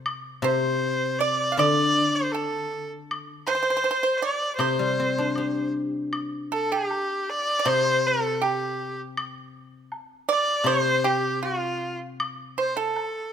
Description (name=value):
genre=chinese traditional, Chinese chamber ensemble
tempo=79 BPM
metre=2/4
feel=rubato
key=C zhi mode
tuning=A4 = 440 Hz
part: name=guzheng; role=accompaniment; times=0.0-12.9 s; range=C3 to G4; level=-28 LUFS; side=left 4 dB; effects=none
part: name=woodblock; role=percussion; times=0.1-13.1 s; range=none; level=-32 LUFS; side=left 2 dB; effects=none
part: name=clear erhu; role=melody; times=0.4-13.3 s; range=F4 to D5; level=-25 LUFS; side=equal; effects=none
part: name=pipa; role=second line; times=0.4-13.3 s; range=F4 to F5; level=-27 LUFS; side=right 5 dB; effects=none
room=light reverb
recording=close, detailed microphones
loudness=-22 LUFS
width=side -8 dB against mid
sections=0.0-6.1 A section; 6.1-13.3 B section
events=none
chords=none